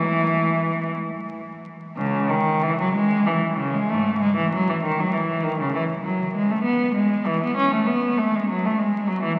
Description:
classical, baroque-style suite movement for unaccompanied cello; 65 BPM (dotted quarters); 6/8; uneven beats, rubato; A4 = 438 Hz
rich cello; solo; 0.0-9.4 s; C#2 to C#4; -22 LUFS; equal
wet cathedral reverb, RT60 5.0 s; very old 78 rpm record, vinyl crackle; -22 LUFS; mono
0.0-2.0 A section; 2.0-9.4 A section

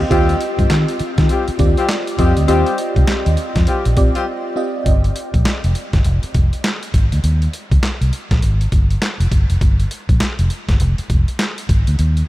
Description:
R&B, new jack swing; 101 BPM; 4/4; swing 61% on 16ths; A4 = 439 Hz
FM electric piano with soft pad layer; accompaniment; 0.0-4.9 s; C4 to Eb5; -21 LUFS; right 1 dB; chorus, phaser
vintage muted fingered electric bass; bass; 0.0-12.2 s; F1 to Eb3; -16 LUFS; equal
mellow horn section; stabs; 0.1-4.2 s; G3 to G4; -24 LUFS; left 3 dB; tape echo
boom bap sampler-style drum kit; drums; 0.1-12.3 s; handclaps, hi-hat, kick drum, snare drum; -18 LUFS; equal
light reverb; -14 LUFS; side -16 dB against mid
0.1-4.9 A section; 4.9-12.3 B section
break 4.3-4.9
0.1 Eb69; 4.9 G7(no3); 6.0 Fm; 7.2 Eb5; 8.4 Fmadd9; 9.6 G7(no3); 10.8 Fm

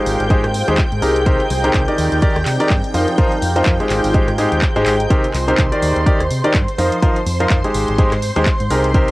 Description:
piano house; 125 BPM; 4/4; swing 57% on 16ths; A4 = 441 Hz
analog string pad; sustained chords; 0.0-9.1 s; C5 to G6; -24 LUFS; right 1 dB; ensemble chorus, sidechain pumping, cassette tape
clear concert grand piano; riff; 0.0-9.1 s; C3 to D5; -18 LUFS; equal; sidechain pumping, cassette tape
granular cloud pad; texture; 0.0-5.1 s; C4 to Bb5; -24 LUFS; left 1 dB; built-in reverb, sidechain pumping, cassette tape
deep dub fingered electric bass; bass; 0.1-9.0 s; Ab1 to C3; -21 LUFS; equal; sidechain pumping
punchy analog drum machine; drums; 0.1-9.1 s; handclaps, hi-hat, rim click; -25 LUFS; equal; cassette tape
electronic kick drum; drums; 0.3-9.1 s; -16 LUFS; equal; cassette tape
moderate booth ambience, RT60 0.2 s; home recording on cassette; -13 LUFS; side -19 dB against mid
0.0-5.1 A section; 5.1-9.1 B section
drum fill 4.9; drop 5.1-9.1
0.1 Abmaj7; 1.3 Cm7; 2.0 Ebmaj7; 2.9 F7sus4; 3.9 Abmaj7; 5.1 Cm7; 5.8 Ebmaj7; 6.8 F7sus4; 7.7 Abmaj7

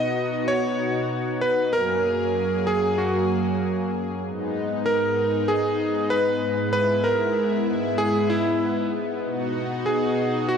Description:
synthwave; 96 BPM; 4/4; straight; A4 = 442 Hz
bright electric grand piano; melody; 0.0-10.6 s; E4 to D#5; -24 LUFS; right 1 dB; tape echo
lush unison pad; sustained chords; 0.0-10.6 s; F#2 to G#4; -24 LUFS; left 1 dB; chorus
wet scoring stage reverb, RT60 1.8 s; dark, warm production; -21 LUFS; side -7 dB against mid
0.0-10.6 A section
0.0 B; 1.7 F#add9; 4.2 G#m; 6.7 E/G#; 9.2 B

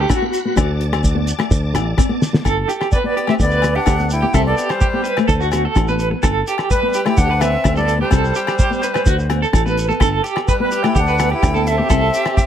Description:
highlife guitar band; 127 BPM; 4/4; straight; G major; A4 = 442 Hz
nylon-string guitar; accompaniment; 0.0-12.1 s; G3 to D4; -23 LUFS; left 3 dB
bright tonewheel organ; sustained chords; 0.0-2.4 s; D5 to B5; -31 LUFS; equal; slow rotary speaker, chorus vibrato
electric guitar at the edge of break-up; arpeggios; 0.0-12.5 s; F#4 to B4; -21 LUFS; right 3 dB; tremolo, tape echo
fingered electric bass; bass; 0.0-12.1 s; G1 to D2; -19 LUFS; equal
damped 70s drum kit; drums; 0.1-12.5 s; hi-hat, kick drum, rim click, snare drum; -19 LUFS; equal
agogo bells; percussion; 0.1-12.4 s; -28 LUFS; left 12 dB
shekere; percussion; 0.1-12.5 s; -24 LUFS; right 2 dB
bright silver concert flute; melody; 2.9-12.5 s; B4 to G5; -21 LUFS; left 1 dB; tape echo
melodica; second line; 2.9-12.5 s; G3 to E4; -26 LUFS; left 3 dB
light reverb; -14 LUFS; side -9 dB against mid
0.0-2.5 A section; 2.5-12.5 B section
clean electric guitar solo 0.0-2.5; drum fill 2.2
0.0 Gmaj7; 0.6 D5; 2.5 G; 4.3 C5; 5.3 D; 6.2 G; 8.1 C5; 9.1 D; 10.0 G; 11.9 C

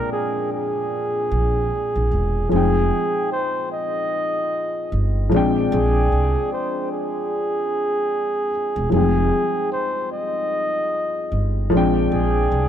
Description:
lo-fi hip hop; 75 BPM; 4/4; swing 60% on 16ths; A4 = 440 Hz
mellow flugelhorn; melody; 0.0-12.7 s; Ab4 to Eb5; -23 LUFS; right 1 dB; low-pass filter, tape echo
dark upright piano; accompaniment; 0.0-12.7 s; Bb2 to G5; -23 LUFS; left 2 dB; low-pass filter
upright bass; bass; 1.3-12.7 s; E1 to C2; -21 LUFS; equal
light reverb; -19 LUFS; side -10 dB against mid
0.0-12.7 A section
0.0 Bb13; 2.5 Fm9; 5.3 Bb13; 8.9 Fm9; 11.7 Bb13

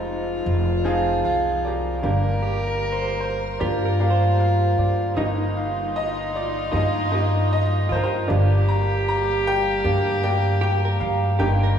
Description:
acoustic folk-pop ballad; 77 BPM; 4/4; straight; A4 = 440 Hz
bright upright piano; melody; 0.0-11.8 s; F1 to Bb5; -24 LUFS; right 1 dB
dark viola; second line; 0.0-11.8 s; Eb4 to Bb4; -26 LUFS; left 2 dB
direct-recorded clean electric guitar; arpeggios; 0.0-11.8 s; Eb4 to C5; -31 LUFS; right 5 dB; tremolo
upright bass; bass; 0.0-11.8 s; F1 to G2; -23 LUFS; equal
warm chamber string section; sustained chords; 2.0-11.8 s; G3 to Bb4; -33 LUFS; equal
wet recital hall reverb, RT60 1.5 s; recorded in a church or concert hall, studio reverb; -19 LUFS; side -8 dB against mid
0.0-2.0 A section; 2.0-11.8 B section
0.0 Fm7; 2.0 Gm; 5.2 Eb/G; 8.3 Gm

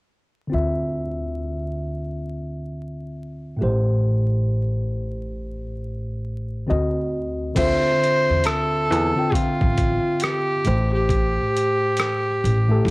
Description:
R&B, neo-soul; 68 BPM; 4/4; swing 62% on 16ths; D minor; A4 = 440 Hz
tine electric piano; accompaniment; 0.5-12.9 s; A2 to G5; -25 LUFS; left 1 dB; auto-pan, cassette tape
upright bass; bass; 0.5-12.9 s; G1 to E2; -24 LUFS; equal
clear viola; melody; 7.6-12.9 s; F4 to C5; -21 LUFS; equal; cassette tape
boom bap sampler-style drum kit; drums; 7.6-12.9 s; crash cymbal, hi-hat, kick drum, rim click; -25 LUFS; equal; cassette tape
light reverb; home recording on cassette, vinyl crackle; -19 LUFS; side -24 dB against mid
0.5-7.6 A section; 7.6-12.9 B section
0.5 Dm9; 3.6 Am7; 6.7 D7b9; 7.6 Dm9; 10.7 Am7

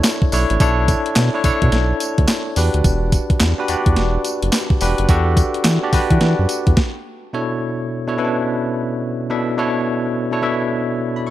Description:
R&B, new jack swing; 107 BPM; 4/4; swing 63% on 16ths; B minor; A4 = 438 Hz
barky tine electric piano; accompaniment; 0.0-11.3 s; B2 to C#6; -19 LUFS; equal; fast stereo tremolo
crisp 8-bit digital drum machine; drums; 0.0-6.9 s; handclaps, hi-hat, kick drum, snare drum, tambourine; -17 LUFS; equal; overdrive
round analog bass; bass; 0.3-6.7 s; E1 to E3; -18 LUFS; equal
light reverb, digital ambience; bright 1980s-style digital production; -15 LUFS; side -14 dB against mid
0.0-7.3 A section; 7.3-11.3 A section
stop 6.8-7.3
0.0 Bm11; 2.6 Em7; 7.3 Bm11

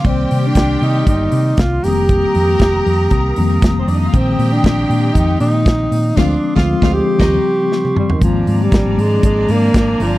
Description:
disco; 118 BPM; 4/4; straight; A4 = 440 Hz
rich studio string section; second line; 0.0-10.2 s; C4 to Bb5; -26 LUFS; right 1 dB
mellow tine electric piano; accompaniment; 0.0-10.2 s; Db3 to D5; -20 LUFS; left 3 dB; medium stereo tremolo
warm woodwind section; sustained chords; 0.0-10.2 s; Ab3 to Eb6; -28 LUFS; right 1 dB
hollow-body short-scale fingered electric bass; bass; 0.0-10.2 s; F1 to C3; -17 LUFS; equal
modern studio drum kit; drums; 0.0-10.1 s; crash cymbal, hi-hat, kick drum, snare drum, splash cymbal, toms; -15 LUFS; equal
breathy alto saxophone; melody; 0.1-10.2 s; Eb3 to G4; -18 LUFS; equal
little or no reverb; dry, close 1970s-style studio recording; -12 LUFS; side -16 dB against mid
0.0-8.2 A section; 8.2-10.2 B section
band accent 6.2-8.2; drum fill 7.7-8.2
0.0 Cm9; 1.8 F9sus4; 4.1 Bb7sus4; 6.2 Dm7b5; 7.2 Eb13; 8.2 Ab69

